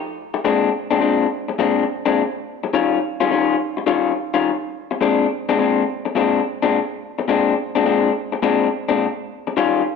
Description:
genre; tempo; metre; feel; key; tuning
blues; 105 BPM; 4/4; swing 65% on 8ths; Bb mixolydian; A4 = 440 Hz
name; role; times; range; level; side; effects
electric guitar through a small old amp; solo; 0.3-9.8 s; Bb2 to F4; -17 LUFS; left 6 dB; none
room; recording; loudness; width
wet echo chamber reverb, RT60 1.3 s, digital ambience; none; -17 LUFS; side -5 dB against mid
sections
0.4-10.0 A section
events
none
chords
0.4 Bb9; 2.7 Eb9; 5.0 Bb9

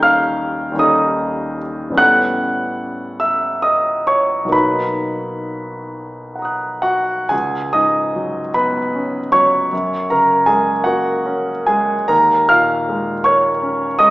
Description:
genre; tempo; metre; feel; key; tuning
classical, impressionist solo piano; 40-55 BPM (dotted quarters); 6/8; rubato; unclear; A4 = 441 Hz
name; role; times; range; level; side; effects
clear concert grand piano; solo; 0.0-14.1 s; A1 to G6; -14 LUFS; equal; none
room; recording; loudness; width
wet recital hall reverb, RT60 1.4 s; recorded in a church or concert hall, small speaker sound; -14 LUFS; side -19 dB against mid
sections
0.0-7.3 A section; 7.3-14.1 B section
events
none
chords
0.0 D#7#11; 2.0 A9; 4.5 Bmaj7; 7.3 C#9sus4; 9.7 F#add9; 12.1 D#9sus4

